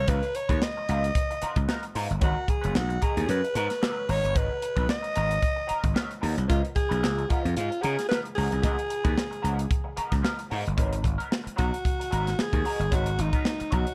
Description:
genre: funk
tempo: 112 BPM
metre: 4/4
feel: swing 56% on 16ths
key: G# dorian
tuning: A4 = 437 Hz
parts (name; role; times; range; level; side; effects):
- growling alto saxophone; melody; 0.0-13.9 s; D#4 to D#5; -32 LUFS; equal; none
- gritty slap bass; bass; 0.0-13.8 s; F#1 to C#3; -30 LUFS; equal; overdrive
- electric guitar through a small old amp; accompaniment; 0.1-13.9 s; E#3 to B4; -37 LUFS; equal; wah, analog chorus
- crisp fusion drum kit; drums; 0.1-13.9 s; hi-hat, kick drum, snare drum; -30 LUFS; equal; none
room: studio ambience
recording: none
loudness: -27 LUFS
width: mono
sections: 0.0-10.8 A section; 10.8-13.9 B section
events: alto saxophone solo 10.8-13.9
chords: 0.0 C#13; 2.2 G#m9; 6.5 C#13; 10.8 G#m9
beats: | 0.08 0.62 1.15 1.68 | 2.22 2.75 3.29 3.82 | 4.36 4.89 5.43 5.96 | 6.50 7.03 7.57 8.10 | 8.64 9.17 9.71 10.24 | 10.78 11.31 11.85 12.38 | 12.92 13.45

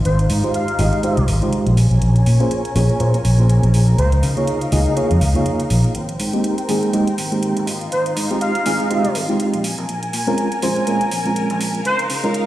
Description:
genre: filtered disco house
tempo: 122 BPM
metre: 4/4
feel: swing 57% on 16ths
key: unclear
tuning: A4 = 439 Hz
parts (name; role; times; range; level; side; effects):
- rich studio violin section; sustained chords; 0.0-12.5 s; C4 to Ab5; -26 LUFS; equal; low-pass filter
- fingered electric bass; bass; 0.0-12.2 s; Ab1 to Db3; -17 LUFS; equal; high-pass filter, low-pass filter
- analog synth brass; melody; 0.1-4.1, 7.9-12.0 s; C5 to F5; -23 LUFS; equal; chorus, cassette tape, low-pass filter, digital delay
- electronic hi-hat; drums; 0.1-12.5 s; none; -29 LUFS; right 1 dB; small room ambience
- mellow reed electric piano; accompaniment; 0.4-12.4 s; Ab3 to Eb5; -20 LUFS; right 1 dB; fast tremolo, phaser, low-pass filter
room: light reverb, digital ambience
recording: played on a big sound system in a bare room, stone room reverb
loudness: -15 LUFS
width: side -14 dB against mid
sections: 0.0-6.0 A section; 6.0-12.5 B section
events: build-up 6.0-12.5; filter sweep 6.0-12.5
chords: 0.0 Fm7/Ab; 1.8 Bbm7; 4.0 Db69; 6.0 Abmaj9; 7.7 Fm7/Ab; 9.6 Bbm7; 11.9 Db69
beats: | 0.05 0.55 1.04 1.53 | 2.02 2.51 3.00 3.50 | 3.99 4.48 4.97 5.46 | 5.96 6.45 6.94 7.43 | 7.92 8.41 8.90 9.40 | 9.89 10.38 10.87 11.36 | 11.86 12.35

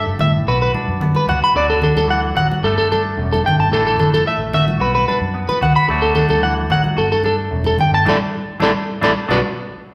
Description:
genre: highlife guitar band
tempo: 110 BPM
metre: 4/4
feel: straight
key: D major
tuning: A4 = 441 Hz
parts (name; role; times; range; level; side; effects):
- semi-hollow electric guitar; accompaniment; 0.0-9.4 s; F#2 to A4; -25 LUFS; equal; spring reverb
- electric guitar at the edge of break-up; arpeggios; 0.0-9.4 s; E4 to B5; -19 LUFS; equal; none
- fingered electric bass; bass; 0.1-9.4 s; E1 to G2; -26 LUFS; equal; none
- congas; percussion; 0.2-9.4 s; none; -24 LUFS; equal; none
room: wet large studio reverb, RT60 1.5 s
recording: band playing live in one room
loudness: -17 LUFS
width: mono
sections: 0.0-9.9 A section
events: band accent 8.1-9.9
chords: 0.5 Bm; 1.5 D; 2.6 Gsus2; 3.7 Asus4; 4.8 Bm; 5.9 D; 7.0 Gsus2; 8.1 Asus4; 9.2 Bm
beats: 0.47 1.01 | 1.55 2.09 2.63 3.17 | 3.72 4.26 4.80 5.35 | 5.89 6.43 6.98 7.52 | 8.07 8.61 9.16

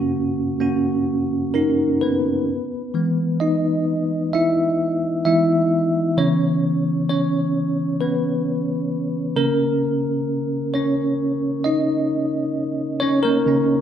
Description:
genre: pop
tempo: 65 BPM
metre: 4/4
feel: straight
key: unclear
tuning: A4 = 440 Hz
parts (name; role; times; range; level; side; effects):
- bell-like tine electric piano; solo; 0.0-13.8 s; F#2 to E5; -18 LUFS; equal; fast stereo tremolo
room: wet stone room reverb, RT60 1.4 s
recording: band playing live in one room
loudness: -18 LUFS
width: side -9 dB against mid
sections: 0.0-2.5 A section; 2.5-13.8 B section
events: tine electric piano solo 2.5-13.8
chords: 0.0 F#; 2.5 E; 6.2 C#m7; 9.4 A#madd11/C#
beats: 0.61 1.55 | 2.49 3.41 4.33 5.26 | 6.18 7.10 8.01 8.92 | 9.83 10.74 11.65 12.56 | 13.47

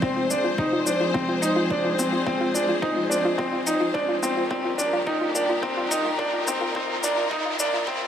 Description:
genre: piano and strings electronica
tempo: 107 BPM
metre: 4/4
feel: straight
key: F dorian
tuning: A4 = 441 Hz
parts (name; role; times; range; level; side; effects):
- dark symphonic string section; sustained chords; 0.0-8.1 s; F2 to C5; -28 LUFS; left 2 dB; sidechain pumping
- clear upright piano; riff; 0.0-8.1 s; C4 to Eb4; -24 LUFS; right 1 dB; digital delay
- electronic kick drum; drums; 0.0-8.0 s; none; -34 LUFS; equal; small room ambience
- riser; sound effects; 0.0-8.1 s; none; -34 LUFS; right 1 dB; none
- soft round pluck; arpeggios; 0.2-8.1 s; F4; -30 LUFS; left 1 dB; chorus, sidechain pumping, digital delay
- shaker; drums; 0.3-7.7 s; none; -31 LUFS; left 3 dB; small room ambience
room: moderate huge ambient reverb, RT60 6.4 s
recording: high-pass filter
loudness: -21 LUFS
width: side -9 dB against mid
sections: 0.0-8.1 A section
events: build-up 0.0-8.1; riser 0.0-8.1; filter sweep on synth arpeggio sound 0.0-8.1; filter sweep 0.0-8.1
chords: 0.0 Fm; 4.5 Eb/F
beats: | 0.03 0.59 1.15 1.71 | 2.27 2.83 3.39 3.95 | 4.51 5.07 5.63 6.19 | 6.75 7.32 7.88

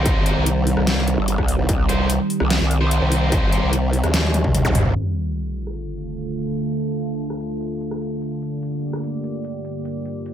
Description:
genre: heavy wobble dubstep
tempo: 147 BPM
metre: 4/4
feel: half-time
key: D phrygian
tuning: A4 = 438 Hz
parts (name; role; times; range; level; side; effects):
- evolving wavetable pad; sustained chords; 0.0-10.3 s; D2 to D5; -24 LUFS; right 1 dB; chorus, built-in reverb, sidechain pumping
- tight distorted guitar; stabs; 0.0-3.7 s; Eb4 to C5; -28 LUFS; right 2 dB; distortion, digital delay
- formant-sweep wobble bass; bass; 0.0-4.9 s; G1 to Eb2; -20 LUFS; equal; chorus, overdrive
- dubstep drum kit; drums; 0.1-10.3 s; hi-hat, rim click, snare drum, toms; -23 LUFS; equal; overdrive, low-pass filter on snare, low-pass filter on hats, low-pass filter on toms, low-pass filter on room
- electronic kick drum; drums; 0.1-4.7 s; none; -21 LUFS; equal; distortion
- growl bass; bass; 1.2-3.0 s; G1 to C2; -20 LUFS; equal; chorus, overdrive
- zap and sub drop; sound effects; 4.6-6.6 s; none; -27 LUFS; equal; none
room: light reverb, digital ambience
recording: low-pass filter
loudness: -19 LUFS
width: side -10 dB against mid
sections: 0.0-5.0 A section; 5.0-10.3 B section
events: drop 0.0-5.0; drum fill 4.1-5.0; impact 5.0-6.6; filter sweep 5.0-10.3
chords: 0.0 Cm; 5.0 Dm; 8.2 Gm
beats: | 0.06 0.46 0.87 1.28 | 1.69 2.10 2.50 2.91 | 3.32 3.73 4.14 4.54 | 4.95 5.36 5.77 6.18 | 6.59 6.99 7.40 7.81 | 8.22 8.63 9.04 9.44 | 9.85 10.26

